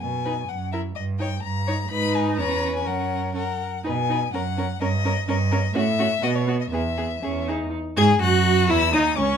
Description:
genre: quick classical-period movement for string quartet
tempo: 125 BPM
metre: 2/4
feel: rubato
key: unclear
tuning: A4 = 440 Hz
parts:
  - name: rich violin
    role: melody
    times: 0.0-9.4 s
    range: C#5 to G#6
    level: -27 LUFS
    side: left 8 dB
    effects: none
  - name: rich cello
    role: bass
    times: 0.0-9.4 s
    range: C#2 to B2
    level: -24 LUFS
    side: right 3 dB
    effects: none
  - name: rich violin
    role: second line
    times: 0.3-9.4 s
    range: C#4 to C#5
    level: -26 LUFS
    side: left 3 dB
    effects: none
  - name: rich viola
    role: accompaniment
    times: 0.3-9.4 s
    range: B3 to G#4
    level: -27 LUFS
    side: right 3 dB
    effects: none
room: light reverb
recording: minimal, uncompressed stereo recording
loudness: -20 LUFS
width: side -7 dB against mid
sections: 0.0-7.7 A section; 7.7-9.4 B section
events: none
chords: 0.0 B; 0.5 F#7(no3); 1.0 D#/G; 1.9 G#m; 2.4 C#m7/E; 2.9 F#; 3.9 B; 4.3 F#; 4.8 D#7/G; 5.8 F#m/A (rootless); 6.2 B5; 6.7 E; 7.7 F#sus2; 8.7 C#m

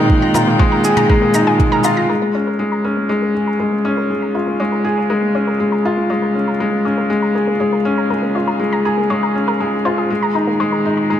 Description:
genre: piano and strings electronica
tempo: 120 BPM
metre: 4/4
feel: straight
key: unclear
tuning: A4 = 440 Hz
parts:
  - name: muted string quartet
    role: sustained chords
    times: 0.0-11.2 s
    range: Bb2 to G5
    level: -25 LUFS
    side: right 2 dB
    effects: sidechain pumping
  - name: felt-muted upright piano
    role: riff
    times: 0.0-11.2 s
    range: Ab3 to Ab4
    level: -15 LUFS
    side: left 1 dB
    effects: tape echo
  - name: clear studio cello section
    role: bass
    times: 0.0-2.1 s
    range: Bb2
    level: -22 LUFS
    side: right 1 dB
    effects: sidechain pumping
  - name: electronic kick drum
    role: drums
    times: 0.1-1.7 s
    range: none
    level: -14 LUFS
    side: right 1 dB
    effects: overdrive
  - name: analog pluck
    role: arpeggios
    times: 0.2-11.1 s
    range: Bb3 to Bb5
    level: -24 LUFS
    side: left 2 dB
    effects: chorus, sidechain pumping, tape echo
  - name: toms and shaker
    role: drums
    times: 0.3-1.9 s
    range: none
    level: -25 LUFS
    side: right 2 dB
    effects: low-pass filter on toms, low-pass filter on snare, low-pass filter on perc, low-pass filter on room
room: wet recital hall reverb, RT60 1.6 s, studio reverb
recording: none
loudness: -14 LUFS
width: side -10 dB against mid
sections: 0.0-2.1 A section; 2.1-11.2 B section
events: fade-in on string quartet 2.1-11.2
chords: 0.0 Fm7/Bb; 2.1 Bbm7; 10.1 Fm7/Bb

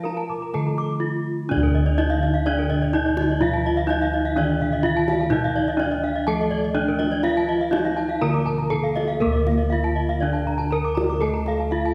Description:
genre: Balinese gamelan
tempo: 124 BPM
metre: 4/4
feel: straight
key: D pelog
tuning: A4 = 440 Hz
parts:
  - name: gamelan-type bronze metallophone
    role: melody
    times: 0.0-11.9 s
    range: Bb3-20c to Bb4-20c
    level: -27 LUFS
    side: equal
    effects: none
  - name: gamelan-type bronze metallophone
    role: accompaniment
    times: 0.0-11.9 s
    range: D3 to Bb3-20c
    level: -33 LUFS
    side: equal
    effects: none
  - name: gamelan-type bronze metallophone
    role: arpeggios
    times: 0.0-11.8 s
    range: Bb4-20c to D6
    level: -31 LUFS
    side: equal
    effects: none
  - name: gamelan-type bossed gongs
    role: bass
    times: 0.0-11.9 s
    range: D2 to Bb4-20c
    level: -27 LUFS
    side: equal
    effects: none
  - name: kendang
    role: percussion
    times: 0.0-11.9 s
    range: none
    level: -34 LUFS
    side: equal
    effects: none
  - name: gamelan-type bronze metallophone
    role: arpeggios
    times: 0.2-11.9 s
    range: Bb4-20c to D6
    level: -33 LUFS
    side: equal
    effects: none
room: wet scoring stage reverb, RT60 1.6 s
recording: recorded in a church or concert hall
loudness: -22 LUFS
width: mono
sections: 0.0-1.5 A section; 1.5-9.2 B section; 9.2-11.9 C section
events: none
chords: none

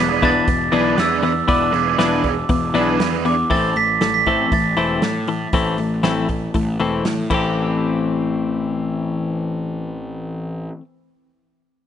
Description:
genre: indie rock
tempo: 118 BPM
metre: 4/4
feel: straight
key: A minor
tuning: A4 = 440 Hz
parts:
  - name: glockenspiel with soft plastic mallets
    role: melody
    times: 0.0-7.0 s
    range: D6 to B6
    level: -20 LUFS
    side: right 5 dB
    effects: digital delay
  - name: overdriven electric guitar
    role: riff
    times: 0.0-3.3 s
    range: B3 to B4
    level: -23 LUFS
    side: right 12 dB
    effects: ensemble chorus
  - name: twelve-string electric guitar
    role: riff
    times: 0.0-10.8 s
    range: E3 to G4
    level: -20 LUFS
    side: left 4 dB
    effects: warbly pitch drift
  - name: fuzz picked electric bass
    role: bass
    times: 0.0-10.7 s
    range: E1 to A2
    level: -26 LUFS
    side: right 1 dB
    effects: overdrive
  - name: loose indie drum kit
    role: drums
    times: 0.2-7.4 s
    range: crash cymbal, hi-hat, kick drum, snare drum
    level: -24 LUFS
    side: right 2 dB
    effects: none
room: light reverb, studio reverb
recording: rough home demo mix, nothing above 11.0 kHz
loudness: -17 LUFS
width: side -9 dB against mid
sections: 0.0-7.6 A section; 7.6-11.6 B section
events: drum fill 7.3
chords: 0.0 E7sus4; 3.5 Am; 7.3 Am7

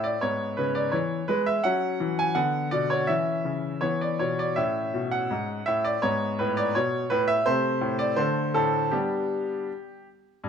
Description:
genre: classical-period piano sonatina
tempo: 83 BPM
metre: 2/4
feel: rubato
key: A major, G major from 7.5 s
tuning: A4 = 440 Hz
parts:
  - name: bright grand piano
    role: solo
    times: 0.0-10.5 s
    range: G2 to G#5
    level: -24 LUFS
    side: equal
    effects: none
room: moderate recital hall reverb, RT60 1.4 s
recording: close, detailed microphones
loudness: -23 LUFS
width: side -7 dB against mid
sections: 0.0-10.4 A section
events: none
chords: 0.2 E/G#; 1.6 F#5; 2.4 Bm/D; 3.1 C#m; 3.8 E5; 4.6 A; 6.0 Amaj9/G#; 7.5 Am/C; 8.9 G

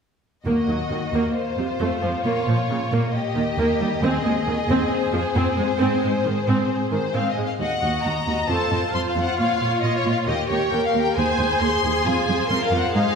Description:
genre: cinematic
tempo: 135 BPM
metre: 4/4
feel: straight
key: unclear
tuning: A4 = 439 Hz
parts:
  - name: warm symphonic violin section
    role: melody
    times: 0.5-13.2 s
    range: C5 to C6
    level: -25 LUFS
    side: left 4 dB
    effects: none
  - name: rich chamber violin section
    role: second line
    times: 0.5-13.2 s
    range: Eb4 to Eb5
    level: -27 LUFS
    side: left 2 dB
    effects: none
  - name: clear symphonic viola section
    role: accompaniment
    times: 0.5-13.2 s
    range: C3 to C5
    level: -24 LUFS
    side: right 2 dB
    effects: none
  - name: warm symphonic cello section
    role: bass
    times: 0.5-13.0 s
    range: Eb2 to Bb2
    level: -24 LUFS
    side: right 2 dB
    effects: none
room: wet scoring stage reverb, RT60 1.6 s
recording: heard from further back in the room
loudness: -19 LUFS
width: side -6 dB against mid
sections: 0.5-7.6 A section; 7.6-13.2 B section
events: none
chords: 0.5 Ebm; 1.4 F; 2.2 Bbm; 3.1 Eb; 4.0 Ab/Eb; 4.9 Fm; 5.8 Ab; 7.6 Ebm; 8.5 F; 9.4 Bbm; 10.3 Eb; 11.2 Ab/Eb; 12.1 Fm

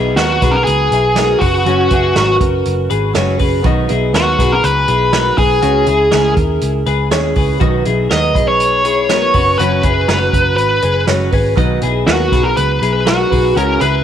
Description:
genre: jangly indie pop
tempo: 121 BPM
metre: 4/4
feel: straight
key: B major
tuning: A4 = 439 Hz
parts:
  - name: fingerpicked steel-string acoustic guitar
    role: accompaniment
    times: 0.0-14.0 s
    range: B2 to B4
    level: -20 LUFS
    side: right 10 dB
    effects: none
  - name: twelve-string electric guitar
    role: arpeggios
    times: 0.0-14.0 s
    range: C#4 to A#5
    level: -19 LUFS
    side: left 8 dB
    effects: spring reverb
  - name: vintage muted picked electric bass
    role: bass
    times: 0.0-14.0 s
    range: F#1 to D#2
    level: -18 LUFS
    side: equal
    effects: none
  - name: high-gain lead guitar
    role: melody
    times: 0.2-14.0 s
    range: F#4 to D#5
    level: -14 LUFS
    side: left 1 dB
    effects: distortion, tape echo
  - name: vintage drum kit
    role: drums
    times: 0.2-13.9 s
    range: hi-hat, kick drum, snare drum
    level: -18 LUFS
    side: right 2 dB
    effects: none
room: moderate plate reverb, RT60 1.6 s, small room ambience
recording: 1960s-style stereo with parts hard left and right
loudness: -11 LUFS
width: side -9 dB against mid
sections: 0.0-14.0 A section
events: none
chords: 0.0 B; 1.4 F#sus4; 3.6 B; 5.6 C#m; 7.6 B; 9.3 F#sus4; 11.6 B

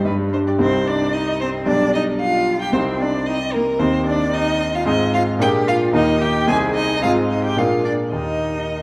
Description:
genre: quick classical-period movement for piano trio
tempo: 111 BPM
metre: 2/4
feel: straight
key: C minor, Eb major from 4.9 s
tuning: A4 = 442 Hz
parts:
  - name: rich violin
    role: melody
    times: 0.0-8.8 s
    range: Bb4 to Ab5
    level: -25 LUFS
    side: equal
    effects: none
  - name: rich cello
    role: second line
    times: 0.0-8.8 s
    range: G3 to Ab4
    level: -25 LUFS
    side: equal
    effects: none
  - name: clear grand piano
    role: accompaniment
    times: 0.0-8.8 s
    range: B1 to Ab4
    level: -22 LUFS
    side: equal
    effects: none
room: moderate concert hall reverb, RT60 2.2 s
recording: dark, warm production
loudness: -19 LUFS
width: mono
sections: 0.6-8.8 A section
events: none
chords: 0.1 G5; 0.6 Cm; 1.7 G/B; 2.7 Cm; 3.8 Cm/Eb; 4.9 Fm7/Ab; 5.4 Bb7; 5.9 Eb; 6.5 Ab/C; 7.0 Ab; 7.6 Bb7; 8.1 Eb

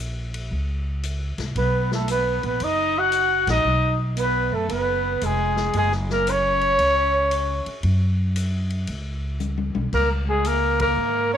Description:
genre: jazz, small-group swing and bop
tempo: 115 BPM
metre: 4/4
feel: swing 67% on 8ths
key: F# major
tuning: A4 = 442 Hz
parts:
  - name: upright bass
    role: bass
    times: 0.0-11.4 s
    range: E#1 to G#2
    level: -24 LUFS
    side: equal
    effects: none
  - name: swinging big-band drum kit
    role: drums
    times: 0.3-10.9 s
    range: crash cymbal, hi-hat, kick drum, ride cymbal, snare drum, toms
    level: -34 LUFS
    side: left 5 dB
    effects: none
  - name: mellow trumpet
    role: melody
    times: 1.6-11.4 s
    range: G#4 to F#5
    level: -22 LUFS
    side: left 3 dB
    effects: none
  - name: breathy tenor saxophone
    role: second line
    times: 1.6-11.4 s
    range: G#3 to F#4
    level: -26 LUFS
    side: right 10 dB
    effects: none
room: light reverb, small room ambience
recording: 1960s-style stereo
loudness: -20 LUFS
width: side -9 dB against mid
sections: 0.0-11.4 A section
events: band accent 3.4, 10.7; drum fill 9.4-9.9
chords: 0.0 F# (rootless); 1.6 B; 5.8 F#5; 9.9 C#5

